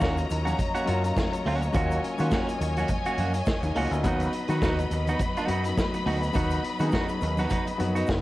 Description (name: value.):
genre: disco.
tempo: 104 BPM.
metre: 4/4.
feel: swing 56% on 16ths.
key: Eb minor.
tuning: A4 = 440 Hz.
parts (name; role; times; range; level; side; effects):
clean electric guitar; accompaniment; 0.0-8.1 s; Bb3 to Gb4; -31 LUFS; right 3 dB; none.
clear grand piano; accompaniment; 0.0-8.2 s; Gb3 to F#5; -32 LUFS; left 3 dB; none.
clear symphonic string section; sustained chords; 0.0-8.2 s; Gb3 to B5; -31 LUFS; left 1 dB; none.
overdriven fingered electric bass; bass; 0.0-8.2 s; F#1 to Eb3; -28 LUFS; equal; none.
vintage drum kit; drums; 0.0-8.2 s; hi-hat, kick drum, snare drum; -30 LUFS; equal; none.
congas; percussion; 0.0-8.2 s; none; -38 LUFS; left 1 dB; none.
egg shaker; percussion; 0.0-8.2 s; none; -54 LUFS; right 6 dB; none.
room: light reverb, small room ambience.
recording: home recording on cassette.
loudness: -24 LUFS.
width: side -17 dB against mid.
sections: 0.0-8.2 A section.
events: grand piano fill 7.5-8.2.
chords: 0.0 Ebm7; 4.0 B.